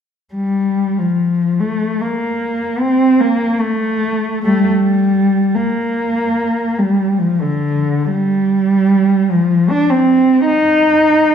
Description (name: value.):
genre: classical, free, expressive piece for unaccompanied cello.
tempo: 44-79 BPM.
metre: 3/4.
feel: rubato.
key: Bb major.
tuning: A4 = 438 Hz.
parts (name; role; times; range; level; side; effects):
dark cello; solo; 0.3-11.3 s; D3 to Eb4; -12 LUFS; equal; none.
room: wet recital hall reverb, RT60 1.4 s.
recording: recorded in a church or concert hall.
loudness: -13 LUFS.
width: side -8 dB against mid.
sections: 0.4-5.5 A section; 5.5-11.3 B section.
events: none.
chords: none.